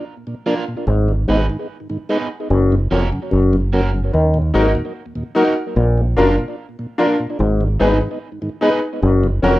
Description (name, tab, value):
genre	reggae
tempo	74 BPM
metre	4/4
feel	straight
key	unclear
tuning	A4 = 443 Hz
part	mellow tonewheel organ	accompaniment	0.3-9.5 s	Eb2 to Eb4	-23 LUFS	right 1 dB	slow rotary speaker, tape echo
part	electric guitar at the edge of break-up	accompaniment	0.5-9.6 s	Bb3 to Cb5	-26 LUFS	right 4 dB	tape echo
part	overdriven clav	riff	0.9-9.6 s	F2 to Eb3	-18 LUFS	left 2 dB	auto-wah
part	deep dub fingered electric bass	bass	0.9-9.6 s	F1 to Eb2	-17 LUFS	right 1 dB	none
part	clear upright piano	stabs	4.5-9.6 s	Db4 to Cb5	-17 LUFS	left 2 dB	none
room	moderate studio ambience, RT60 0.5 s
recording	rough home demo mix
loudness	-15 LUFS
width	side -16 dB against mid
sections	0.0-9.6 A section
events	none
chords	0.0 Bb; 0.9 Abm; 2.5 Gb; 4.1 Ebm; 5.8 Bb; 7.4 Abm; 9.0 Gb